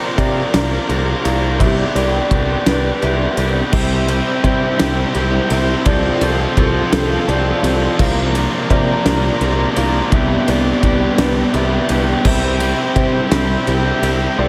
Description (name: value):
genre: post-rock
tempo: 56 BPM (dotted quarters)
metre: 6/8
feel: straight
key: C major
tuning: A4 = 437 Hz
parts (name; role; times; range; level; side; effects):
- lush unison pad; sustained chords; 0.0-14.5 s; A4 to E6; -30 LUFS; equal; none
- felt-muted upright piano; arpeggios; 0.0-14.5 s; A4 to F5; -27 LUFS; equal; digital delay, slapback echo
- tight distorted guitar; riff; 0.0-14.5 s; C3 to Bb4; -22 LUFS; equal; distortion
- picked electric bass; bass; 0.2-14.5 s; C2 to C3; -21 LUFS; equal; none
- loose indie drum kit; drums; 0.2-14.2 s; crash cymbal, kick drum, ride cymbal, snare drum; -22 LUFS; equal; none
- overdriven electric guitar; riff; 3.7-14.4 s; C3 to Bb4; -22 LUFS; equal; spring reverb, slapback echo
room: moderate lush hall reverb, RT60 1.9 s, studio reverb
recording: big arena sound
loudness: -16 LUFS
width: mono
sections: 0.0-14.5 A section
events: none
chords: 0.0 Bb/C; 1.6 G/C; 3.7 C; 5.9 Fadd9/C; 8.0 Bb/C; 10.1 G/C; 12.3 C